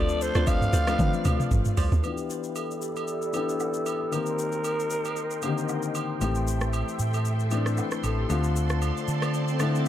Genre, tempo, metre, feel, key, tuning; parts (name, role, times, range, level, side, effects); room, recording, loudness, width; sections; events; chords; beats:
amapiano; 115 BPM; 4/4; swing 55% on 16ths; E phrygian; A4 = 440 Hz
breathy alto saxophone; melody; 0.0-6.0 s; A4 to F5; -31 LUFS; equal; low-pass filter, tape echo
warm grand piano; accompaniment; 0.0-9.9 s; D3 to C5; -30 LUFS; left 5 dB; low-pass filter
string machine, violas; sustained chords; 0.0-9.9 s; G4 to C6; -36 LUFS; right 1 dB; phaser, ensemble chorus, sidechain pumping, low-pass filter
hollow square pluck; stabs; 0.0-1.9 s; F4 to D5; -38 LUFS; right 3 dB; chorus, tape echo
hollow log drum bass; bass; 0.0-2.0 s; A1 to D3; -26 LUFS; equal
smooth R&B drum kit; drums; 0.1-9.9 s; hi-hat, kick drum, rim click, shaker, toms; -30 LUFS; right 1 dB
agogo bells and woodblock; percussion; 0.5-9.7 s; -38 LUFS; right 7 dB
fingered electric bass; bass; 6.2-9.9 s; A1 to D3; -26 LUFS; right 1 dB
swell; sound effects; 8.8-9.9 s; -34 LUFS; equal
little or no reverb; dark, warm production; -24 LUFS; side -11 dB against mid
0.0-2.0 A section; 2.0-9.9 B section
drop 0.0-2.0; drum fill 1.0-2.0; filter sweep 2.0-9.9; swell 8.8-9.9
0.0 Dm7; 2.0 Em7; 4.1 Cm7; 6.2 Am7; 8.3 Dm7
0.47 0.99 1.51 | 2.04 2.56 3.08 3.60 | 4.12 4.65 5.17 5.69 | 6.21 6.73 7.25 7.78 | 8.30 8.82 9.34 9.86